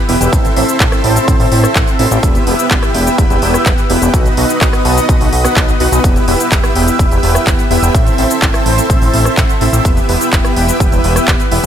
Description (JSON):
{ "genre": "EDM, festival progressive house", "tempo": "126 BPM", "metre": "4/4", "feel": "straight", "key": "E harmonic minor", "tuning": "A4 = 443 Hz", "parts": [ { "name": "lush unison pad", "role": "sustained chords", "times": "0.0-11.7 s", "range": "B4 to E6", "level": "-20 LUFS", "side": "equal", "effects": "chorus, phaser, sidechain pumping" }, { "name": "dense compressed supersaw", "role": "riff", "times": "0.1-11.7 s", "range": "B3 to A5", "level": "-15 LUFS", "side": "equal", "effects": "sidechain pumping, digital delay" }, { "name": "fat analog bass", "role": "bass", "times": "0.1-11.7 s", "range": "E1 to B1", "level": "-15 LUFS", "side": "equal", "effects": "sidechain pumping" }, { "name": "pop drum kit", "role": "drums", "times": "0.1-11.7 s", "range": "cabasa, handclaps, hi-hat, rim click", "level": "-18 LUFS", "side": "equal", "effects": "none" }, { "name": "electronic kick drum", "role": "drums", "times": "0.3-11.4 s", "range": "none", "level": "-13 LUFS", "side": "equal", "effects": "none" } ], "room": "light reverb, digital ambience", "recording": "none", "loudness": "-9 LUFS", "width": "side -9 dB against mid", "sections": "0.0-11.7 A section", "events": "none", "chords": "0.3 Am; 2.2 Em; 4.1 B; 6.0 Em; 7.9 Am; 9.8 Em", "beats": "| 0.33 0.80 1.28 1.75 | 2.23 2.71 3.18 3.66 | 4.14 4.61 5.09 5.56 | 6.04 6.52 6.99 7.47 | 7.95 8.42 8.90 9.37 | 9.85 10.33 10.80 11.28" }